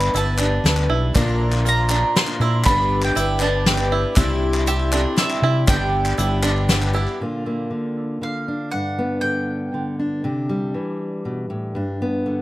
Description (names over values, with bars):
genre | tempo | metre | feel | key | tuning
indie folk with a building arrangement | 119 BPM | 3/4 | straight | G major | A4 = 440 Hz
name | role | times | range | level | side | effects
mandolin | melody | 0.0-9.9 s | E5 to C6 | -24 LUFS | right 2 dB | none
felt-muted upright piano | accompaniment | 0.0-7.2 s | G1 to D5 | -30 LUFS | equal | none
picked twelve-string acoustic guitar | accompaniment | 0.0-7.2 s | G2 to B4 | -26 LUFS | left 3 dB | none
bluegrass banjo | arpeggios | 0.0-7.2 s | D4 to G4 | -27 LUFS | right 5 dB | analog delay
fingered electric bass | bass | 0.0-7.1 s | G1 to C3 | -21 LUFS | equal | none
group handclap | percussion | 0.0-7.1 s | none | -29 LUFS | left 2 dB | none
soft brush drum kit | drums | 0.2-6.8 s | hi-hat, kick drum, snare drum | -19 LUFS | equal | none
pedal harmonium | sustained chords | 1.2-7.2 s | E4 to C6 | -31 LUFS | equal | none
fingerpicked steel-string acoustic guitar | accompaniment | 7.2-12.4 s | G2 to F4 | -23 LUFS | equal | none
room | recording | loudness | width
small room ambience | none | -18 LUFS | side -16 dB against mid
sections
0.0-7.2 A section; 7.2-12.4 B section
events
none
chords
0.0 G; 1.2 Bb; 2.7 G; 4.2 Cadd9; 5.7 G; 7.2 Bb; 8.7 G; 10.2 Cadd9; 11.7 G